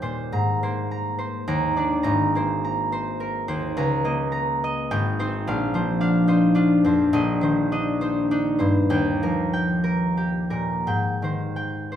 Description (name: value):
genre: classical, solo harp piece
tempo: 83-110 BPM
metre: 3/4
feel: rubato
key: C minor from 5.5 s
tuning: A4 = 440 Hz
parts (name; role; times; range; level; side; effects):
- concert harp; solo; 0.0-12.0 s; Ab1 to Bb5; -20 LUFS; equal; none
room: wet stone room reverb, RT60 1.1 s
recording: heard from further back in the room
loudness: -20 LUFS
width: side -10 dB against mid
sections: 0.0-12.0 A section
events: none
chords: 0.3 Abadd9; 1.5 Eb5; 2.1 Abadd9; 3.8 Dbsus2; 4.9 Abmaj7; 5.5 Bbadd9; 7.1 Cmadd9/Bb; 8.9 Ebadd9; 10.9 Abmaj7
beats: | 0.31 0.91 1.48 | 2.06 2.64 3.20 | 3.76 4.33 4.90 | 5.46 6.02 6.57 | 7.14 7.72 8.32 | 8.91 9.52 10.18 | 10.88 11.58